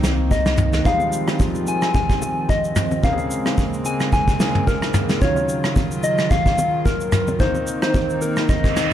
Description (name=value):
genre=amapiano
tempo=110 BPM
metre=4/4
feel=swing 55% on 16ths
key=F minor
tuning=A4 = 440 Hz
part: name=clear concert grand piano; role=accompaniment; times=0.0-8.9 s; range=Db3 to Ab4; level=-28 LUFS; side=equal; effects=none
part: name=hollow soft pad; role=sustained chords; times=0.0-8.9 s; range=Db3 to F4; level=-26 LUFS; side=right 1 dB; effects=chorus, sidechain pumping
part: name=round analog bass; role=bass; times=0.0-0.8 s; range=C2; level=-21 LUFS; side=equal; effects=none
part: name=soft brush drum kit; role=drums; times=0.0-8.9 s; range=kick drum, rim click, shaker, snare drum, toms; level=-20 LUFS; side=equal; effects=none
part: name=bongos and congas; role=percussion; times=0.0-8.9 s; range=none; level=-29 LUFS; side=left 3 dB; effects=none
part: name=soft struck synth lead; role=melody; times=0.3-8.9 s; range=Bb4 to Ab5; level=-23 LUFS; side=left 2 dB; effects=chorus, digital delay
part: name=reverse cymbal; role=sound effects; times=8.7-8.9 s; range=none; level=-24 LUFS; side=right 8 dB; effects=none
room=light reverb, small room ambience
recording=dark, warm production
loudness=-17 LUFS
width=side -11 dB against mid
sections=0.0-8.9 A section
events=reverse cymbal 8.7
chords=0.0 Cm7; 0.9 Fm9; 3.0 Bbm9; 5.2 Ebm9; 7.4 Cm7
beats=0.31 | 0.85 1.40 1.94 2.49 | 3.04 3.58 4.13 4.67 | 5.22 5.76 6.31 6.85 | 7.40 7.94 8.49